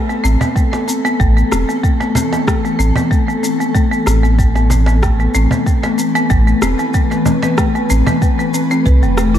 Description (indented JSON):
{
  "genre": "organic downtempo",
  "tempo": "94 BPM",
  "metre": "4/4",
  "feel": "swing 54% on 16ths",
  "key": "A minor",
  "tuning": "A4 = 440 Hz",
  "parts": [
    { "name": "granular cloud pad", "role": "sustained chords", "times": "0.0-9.4 s", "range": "E3 to B4", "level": "-20 LUFS", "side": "left 3 dB", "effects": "built-in reverb, sidechain pumping, shimmer reverb" },
    { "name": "folk marimba with hard mallets", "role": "arpeggios", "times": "0.1-9.4 s", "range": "A3 to B4", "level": "-17 LUFS", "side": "left 1 dB", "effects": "tape echo, shimmer reverb" },
    { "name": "electronic cabasa and rim click", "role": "drums", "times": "0.1-9.4 s", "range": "none", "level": "-24 LUFS", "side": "equal", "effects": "none" },
    { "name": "warm sub bass", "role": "bass", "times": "0.2-9.4 s", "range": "E1 to C2", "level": "-13 LUFS", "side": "equal", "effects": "none" },
    { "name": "cajon", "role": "percussion", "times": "0.4-8.2 s", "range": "none", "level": "-22 LUFS", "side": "right 2 dB", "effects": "none" },
    { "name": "electronic kick drum", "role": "drums", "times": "0.6-9.0 s", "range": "none", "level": "-15 LUFS", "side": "equal", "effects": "none" }
  ],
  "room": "moderate concert hall reverb, RT60 2.1 s",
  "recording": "dark, warm production",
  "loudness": "-12 LUFS",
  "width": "side -10 dB against mid",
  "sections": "0.0-9.4 A section",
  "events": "none",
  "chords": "0.0 Amadd9"
}